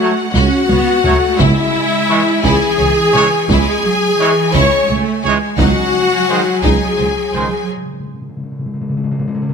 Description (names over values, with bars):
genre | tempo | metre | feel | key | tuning
cinematic, epic orchestral film score | 57 BPM (dotted quarters) | 6/8 | straight | C# minor | A4 = 438 Hz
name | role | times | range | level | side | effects
rich symphonic violin section | melody | 0.0-7.7 s | E5 to C#6 | -22 LUFS | left 3 dB | none
warm symphonic violin section | second line | 0.0-7.6 s | D#4 to G#5 | -22 LUFS | left 3 dB | none
warm symphonic viola section | accompaniment | 0.0-7.7 s | E4 to C#5 | -20 LUFS | right 2 dB | none
bright trombone section | sustained chords | 0.0-7.5 s | D#3 to A3 | -24 LUFS | right 4 dB | none
mellow French horn section | sustained chords | 0.0-7.7 s | E4 to C#5 | -18 LUFS | left 6 dB | none
mellow trumpet section | stabs | 0.0-7.5 s | B#4 to C#5 | -21 LUFS | right 1 dB | none
rich symphonic cello section | bass | 0.0-7.7 s | E3 to C#4 | -21 LUFS | right 4 dB | none
mellow tuba | bass | 0.3-7.5 s | C#2 | -22 LUFS | right 5 dB | none
warm symphonic double bass section | bass | 0.3-7.4 s | C#2 | -20 LUFS | right 4 dB | none
solo taiko drums | drums | 0.3-7.3 s | none | -21 LUFS | left 1 dB | none
timpani | percussion | 1.4-2.4, 5.6-9.5 s | C#3 | -21 LUFS | left 2 dB | none
room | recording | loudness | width
light reverb | close, detailed microphones | -12 LUFS | side -6 dB against mid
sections
0.0-9.5 A section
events
drum fill 0.3-1.4; break 7.7-9.5; timpani fill 7.7-9.5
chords
0.0 F#m/C#; 1.4 C#m; 5.6 G#5/C#; 7.7 N.C.